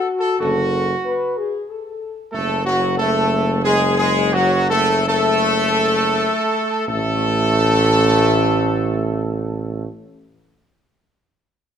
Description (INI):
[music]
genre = classical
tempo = 60-95 BPM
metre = 3/4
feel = straight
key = unclear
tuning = A4 = 439 Hz
[part]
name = mellow trumpet section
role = melody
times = 0.0-9.9 s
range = F#4 to A4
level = -20 LUFS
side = equal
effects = none
[part]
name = mellow French horn section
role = sustained chords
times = 0.0-9.9 s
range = F#3 to B4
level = -23 LUFS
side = left 4 dB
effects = none
[part]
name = clear trombone section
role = sustained chords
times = 0.4-9.9 s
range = D3 to A3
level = -24 LUFS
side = right 2 dB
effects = none
[part]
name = mellow tuba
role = bass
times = 0.4-9.9 s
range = F#1 to A1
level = -20 LUFS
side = right 3 dB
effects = none
[sound]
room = moderate large studio reverb, RT60 1.3 s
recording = none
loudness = -16 LUFS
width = side -8 dB against mid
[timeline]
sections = 0.0-2.3 A section; 2.3-6.9 B section; 6.9-11.8 C section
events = slowing down 1.4-6.9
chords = 0.0 D/F# (rootless); 2.3 F#madd9; 6.9 N.C.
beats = | 0.41 1.05 1.68 | 2.34 2.99 3.65 | 4.34 5.08 5.91 | 6.88 7.86 8.84 | 9.81